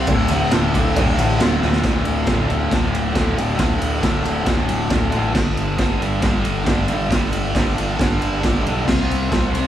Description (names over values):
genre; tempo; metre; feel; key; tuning
garage rock duo or trio; 136 BPM; 4/4; straight; unclear; A4 = 441 Hz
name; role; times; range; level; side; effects
fuzz guitar; riff; 0.0-9.7 s; D2 to C4; -20 LUFS; equal; distortion
overdriven fingered electric bass; bass; 0.0-9.7 s; D1 to D2; -24 LUFS; equal; none
raw garage drum kit; drums; 0.1-9.6 s; crash cymbal, kick drum, ride cymbal, snare drum; -20 LUFS; equal; none
room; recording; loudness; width
moderate large studio reverb, RT60 1.1 s; band playing live in one room; -16 LUFS; side -11 dB against mid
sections
0.0-1.8 A section; 1.8-9.7 B section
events
drum fill 1.6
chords
0.1 D5; 5.4 G5; 8.9 C5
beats
| 0.07 0.51 0.95 1.39 | 1.83 2.27 2.71 3.15 | 3.59 4.03 4.47 4.91 | 5.35 5.79 6.23 6.67 | 7.11 7.55 7.99 8.43 | 8.87 9.31